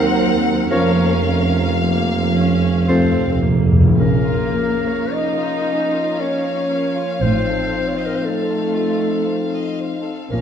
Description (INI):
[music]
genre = classical, slow romantic movement for symphony orchestra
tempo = 56 BPM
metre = 3/4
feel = uneven beats, rubato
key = Bb minor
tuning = A4 = 439 Hz
[part]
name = rich chamber violin section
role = melody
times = 0.0-10.4 s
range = F5 to Gb5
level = -29 LUFS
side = left 6 dB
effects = none
[part]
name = bright large flute ensemble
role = second line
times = 0.0-3.4 s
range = F5 to Gb5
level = -31 LUFS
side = left 2 dB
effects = none
[part]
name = clear oboe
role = second line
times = 0.0-3.3 s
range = C5 to Db5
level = -30 LUFS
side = equal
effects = none
[part]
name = mellow clarinet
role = second line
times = 0.0-10.4 s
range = A4 to Eb5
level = -24 LUFS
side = left 2 dB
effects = none
[part]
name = rich chamber violin section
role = second line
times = 0.0-10.4 s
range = Bb3 to Gb5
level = -30 LUFS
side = left 2 dB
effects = none
[part]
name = mellow bassoon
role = accompaniment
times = 0.0-3.3 s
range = F3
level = -27 LUFS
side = right 2 dB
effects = none
[part]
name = rich chamber viola section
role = accompaniment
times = 0.0-10.4 s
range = A3 to Bb4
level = -24 LUFS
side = right 2 dB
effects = none
[part]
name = mellow French horn section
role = sustained chords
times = 0.0-10.4 s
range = F3 to Eb4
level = -25 LUFS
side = left 4 dB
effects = none
[part]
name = rich chamber cello section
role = bass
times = 0.0-10.4 s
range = A2 to Gb3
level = -24 LUFS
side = right 2 dB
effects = none
[part]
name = rich chamber double bass section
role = bass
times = 0.0-10.4 s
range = A1 to F2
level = -21 LUFS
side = right 3 dB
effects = none
[part]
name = warm tuba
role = bass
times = 0.0-3.7 s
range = F1 to Eb2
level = -23 LUFS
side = right 2 dB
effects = none
[part]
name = timpani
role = percussion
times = 2.9-4.0 s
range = F2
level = -17 LUFS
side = equal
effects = none
[sound]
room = wet concert hall reverb, RT60 2.3 s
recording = dark, warm production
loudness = -16 LUFS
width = side -8 dB against mid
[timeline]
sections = 0.0-4.0 A section; 4.0-10.4 B section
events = timpani fill 2.9-4.0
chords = 0.0 Cm7b5/Eb; 0.7 Bbm/F; 2.9 F; 4.0 Bbm; 7.2 F7/A